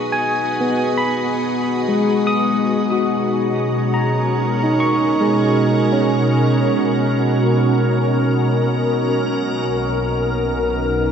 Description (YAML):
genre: ambient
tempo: 69 BPM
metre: 4/4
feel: straight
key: unclear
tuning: A4 = 441 Hz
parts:
  - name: soft additive organ-like pad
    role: sustained chords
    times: 0.0-11.1 s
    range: B2 to D#5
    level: -18 LUFS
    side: equal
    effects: ensemble chorus, built-in reverb
  - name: barky tine electric piano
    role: arpeggios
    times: 0.1-9.7 s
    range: G#3 to D#6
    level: -19 LUFS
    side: moving between left 6 dB and right 4 dB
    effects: overdrive, auto-pan, diffuse ambient delay
  - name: warm studio double bass section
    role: bass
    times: 9.7-11.1 s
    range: B1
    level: -26 LUFS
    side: equal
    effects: none
room: wet concert hall reverb, RT60 2.0 s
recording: nothing above 10.9 kHz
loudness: -16 LUFS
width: side -7 dB against mid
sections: 0.0-9.7 A section; 9.7-11.1 B section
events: filter sweep on ambient pad 9.7-11.1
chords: 0.0 B6; 2.7 D#m7/B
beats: 0.15 1.01 1.86 | 2.72 3.57 4.43 5.30 | 6.17 7.04 7.92 8.80 | 9.68 10.55